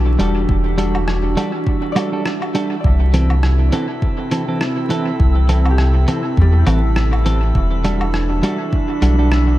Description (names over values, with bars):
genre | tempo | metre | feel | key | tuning
ambient dub | 102 BPM | 4/4 | swing 56% on 16ths | E minor | A4 = 440 Hz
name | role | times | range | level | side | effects
warbly tape-like pad | sustained chords | 0.0-9.6 s | C3 to A4 | -23 LUFS | right 2 dB | chorus, built-in reverb
concert harp | arpeggios | 0.0-8.1 s | G3 to D6 | -30 LUFS | left 2 dB | tape echo
soft dub sub bass | bass | 0.0-9.6 s | E1 to E2 | -14 LUFS | equal | none
drifting glass-harmonics texture | texture | 0.0-9.6 s | E4 to E5 | -30 LUFS | equal | chorus, built-in reverb
clean electric guitar | stabs | 0.2-9.3 s | E3 to A4 | -22 LUFS | right 1 dB | spring reverb, dub echo
lo-fi sampler-style drum kit | drums | 0.2-9.4 s | hi-hat, rim click, woodblock | -27 LUFS | equal | overdrive, small room reverb, dub echo
electronic kick drum | drums | 0.5-8.9 s | none | -18 LUFS | equal | small room reverb
room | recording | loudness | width
light reverb | dark, warm production, vinyl crackle | -14 LUFS | side -15 dB against mid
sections
0.0-9.6 A section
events
none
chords
0.0 Em11; 2.8 C6; 7.5 Em11